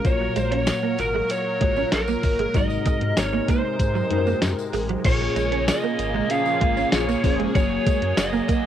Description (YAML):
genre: 1980s-style pop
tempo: 96 BPM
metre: 4/4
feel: straight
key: unclear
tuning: A4 = 440 Hz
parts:
  - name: lead guitar through a small cranked amp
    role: melody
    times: 0.0-8.7 s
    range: Bb4 to F5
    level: -25 LUFS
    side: right 1 dB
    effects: overdrive, cassette tape, tape echo
  - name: glassy digital keys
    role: accompaniment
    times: 0.0-8.7 s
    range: Ab2 to Eb5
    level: -28 LUFS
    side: left 8 dB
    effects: chorus, cassette tape, plate reverb
  - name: sweeping resonant pad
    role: sustained chords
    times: 0.0-8.7 s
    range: C3 to Bb4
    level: -31 LUFS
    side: equal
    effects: chorus, cassette tape, plate reverb
  - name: sub bass with octave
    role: bass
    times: 0.0-8.4 s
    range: F1 to Ab2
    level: -28 LUFS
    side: equal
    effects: none
  - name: clean 12-bit digital drum machine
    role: drums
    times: 0.0-8.6 s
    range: crash cymbal, hi-hat, kick drum, snare drum, tambourine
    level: -23 LUFS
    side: equal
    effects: cassette tape
  - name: tambourine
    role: percussion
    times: 0.0-8.6 s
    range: none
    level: -42 LUFS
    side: left 11 dB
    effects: none
  - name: direct-recorded clean electric guitar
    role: riff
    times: 0.2-8.6 s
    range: Gb3 to Db4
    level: -28 LUFS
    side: right 9 dB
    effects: ensemble chorus, cassette tape, tape echo
  - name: scooped high-gain guitar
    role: accompaniment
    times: 5.0-8.7 s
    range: Gb2 to Bb3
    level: -34 LUFS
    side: left 2 dB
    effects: distortion, lush chorus, cassette tape
  - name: mellow synth brass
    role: stabs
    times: 6.3-7.5 s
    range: F3 to Ab4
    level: -28 LUFS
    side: right 2 dB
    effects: chorus, cassette tape, tape echo, plate reverb
room: moderate booth ambience, RT60 0.2 s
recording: home recording on cassette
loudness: -20 LUFS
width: side -10 dB against mid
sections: 0.0-5.0 A section; 5.0-8.7 B section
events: none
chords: 0.0 Gbmaj7; 2.5 Ab7; 5.0 Bbm7; 7.5 Gbadd9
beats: | 0.05 0.67 1.30 1.92 | 2.55 3.17 3.80 4.42 | 5.05 5.67 6.30 6.92 | 7.55 8.17